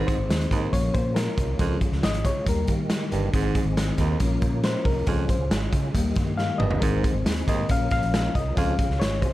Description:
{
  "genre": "uptempo 1960s-style soul",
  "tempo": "138 BPM",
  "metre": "4/4",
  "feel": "straight",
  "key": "Ab major",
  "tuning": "A4 = 440 Hz",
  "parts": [
    { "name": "reed electric piano", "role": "accompaniment", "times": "0.0-9.3 s", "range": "Eb3 to F5", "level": "-28 LUFS", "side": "left 4 dB", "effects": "none" },
    { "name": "percussive tonewheel organ", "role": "sustained chords", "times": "0.0-9.3 s", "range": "Ab3 to Bb4", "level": "-35 LUFS", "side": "right 1 dB", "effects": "fast rotary speaker, chorus vibrato" },
    { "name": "warm baritone saxophone", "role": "riff", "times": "0.0-8.7 s", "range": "Eb2 to Ab2", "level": "-31 LUFS", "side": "right 6 dB", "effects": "none" },
    { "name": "vintage muted fingered electric bass", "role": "bass", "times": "0.0-9.3 s", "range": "G1 to Eb3", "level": "-27 LUFS", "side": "equal", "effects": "none" },
    { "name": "raw garage drum kit", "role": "drums", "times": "0.1-9.3 s", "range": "hi-hat, kick drum, snare drum, toms", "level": "-25 LUFS", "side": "equal", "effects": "none" }
  ],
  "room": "small room ambience",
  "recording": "none",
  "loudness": "-21 LUFS",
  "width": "side -16 dB against mid",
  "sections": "0.0-9.3 A section",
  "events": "reed electric piano solo 0.0-9.3; drum fill 6.4-6.8",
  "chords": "0.0 Ab; 0.7 Bbm; 1.6 Db; 2.5 Eb; 3.3 Ab; 4.2 Bbm; 5.1 Db; 6.0 Eb; 6.8 Ab; 7.7 Bbm; 8.6 Db",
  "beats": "0.29 0.72 1.16 | 1.59 2.03 2.47 2.90 | 3.34 3.77 4.21 4.64 | 5.08 5.51 5.95 6.38 | 6.82 7.26 7.69 8.13 | 8.56 9.00"
}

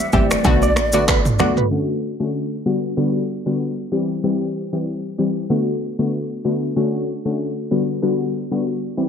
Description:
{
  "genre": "afrobeats",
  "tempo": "95 BPM",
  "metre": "4/4",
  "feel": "swing 55% on 16ths",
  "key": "unclear",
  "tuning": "A4 = 441 Hz",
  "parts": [
    { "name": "mellow silver concert flute", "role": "melody", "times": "0.0-1.4 s", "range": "D5 to E5", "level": "-24 LUFS", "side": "left 2 dB", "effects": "tape echo" },
    { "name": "analog pluck", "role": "accompaniment", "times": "0.0-9.1 s", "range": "D3 to G4", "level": "-20 LUFS", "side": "left 2 dB", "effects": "chorus" },
    { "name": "direct-recorded clean electric guitar", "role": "riff", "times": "0.1-1.7 s", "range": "B4 to E5", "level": "-24 LUFS", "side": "right 7 dB", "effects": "phaser, tape echo" },
    { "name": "woody log drum bass", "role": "bass", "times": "0.1-1.6 s", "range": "G1 to C#2", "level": "-22 LUFS", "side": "right 1 dB", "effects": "none" },
    { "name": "deep house drum kit", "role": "drums", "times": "0.1-1.7 s", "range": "finger snaps, handclaps, kick drum, rim click, shaker, toms", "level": "-20 LUFS", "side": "right 1 dB", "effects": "none" },
    { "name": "congas", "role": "percussion", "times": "0.1-1.6 s", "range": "none", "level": "-25 LUFS", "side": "right 7 dB", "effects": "none" }
  ],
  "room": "wet plate reverb, RT60 1.4 s, digital ambience",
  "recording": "dreamy mix soaked in reverb, low-pass filter",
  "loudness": "-18 LUFS",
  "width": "side -7 dB against mid",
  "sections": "0.0-1.7 A section; 1.7-9.1 B section",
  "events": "filter sweep 1.7-9.1",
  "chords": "0.4 Bm7; 1.7 Dmaj7; 2.7 Gmaj7; 3.9 C; 5.5 Bm7; 6.8 Dmaj7; 7.7 Gmaj7",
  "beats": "0.45 1.08 | 1.71 2.34 2.98 3.61 | 4.24 4.87 5.50 6.13 | 6.76 7.40 8.03 8.66"
}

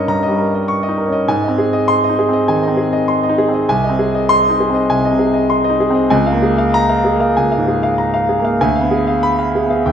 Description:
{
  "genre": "classical, romantic character piece for solo piano",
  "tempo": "98 BPM",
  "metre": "4/4",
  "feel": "rubato",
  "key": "Ab major",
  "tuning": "A4 = 440 Hz",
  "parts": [
    { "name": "clear concert grand piano", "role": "solo", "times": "0.0-9.9 s", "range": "C2 to Db6", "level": "-13 LUFS", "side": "equal", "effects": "none" }
  ],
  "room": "moderate recital hall reverb, RT60 1.5 s",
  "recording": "none",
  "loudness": "-13 LUFS",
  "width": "side -8 dB against mid",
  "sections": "0.0-9.9 A section",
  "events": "none",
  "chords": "0.0 Eb7/G; 1.3 Ab; 3.7 Ab/C; 6.1 Bbm7/Db; 8.6 Ddim7",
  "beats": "0.07 0.67 | 1.27 1.88 2.47 3.07 | 3.68 4.30 4.90 5.50 | 6.12 6.74 7.36 7.97 | 8.59 9.22 9.85"
}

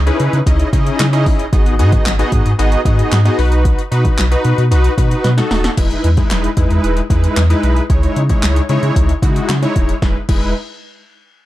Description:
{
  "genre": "dance-pop",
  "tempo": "113 BPM",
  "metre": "4/4",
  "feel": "straight",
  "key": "E major",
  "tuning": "A4 = 439 Hz",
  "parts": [
    { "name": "sub bass with octave", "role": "bass", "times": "0.0-10.5 s", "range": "D#1 to C#3", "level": "-14 LUFS", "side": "equal", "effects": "sidechain pumping" },
    { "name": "big bright polysynth", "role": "accompaniment", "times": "0.1-10.5 s", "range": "G#3 to D#5", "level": "-18 LUFS", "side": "left 1 dB", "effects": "chorus, sidechain pumping" },
    { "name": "deep house drum kit", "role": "drums", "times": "0.1-10.4 s", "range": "crash cymbal, handclaps, hi-hat, kick drum, snare drum", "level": "-16 LUFS", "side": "equal", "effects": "overdrive" }
  ],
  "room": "digital ambience",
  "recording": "dark, warm production",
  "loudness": "-12 LUFS",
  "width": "side -15 dB against mid",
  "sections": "0.0-5.8 A section; 5.8-10.0 B section; 10.0-11.5 C section",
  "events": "drum fill 5.2-5.8",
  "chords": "0.0 C#madd9; 1.5 G#m7; 3.4 B; 5.8 Emaj7; 7.9 C#madd9; 10.0 Emaj7",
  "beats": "0.47 1.00 | 1.53 2.06 2.59 3.12 | 3.65 4.18 4.71 5.24 | 5.78 6.31 6.84 7.37 | 7.90 8.43 8.96 9.49 | 10.02"
}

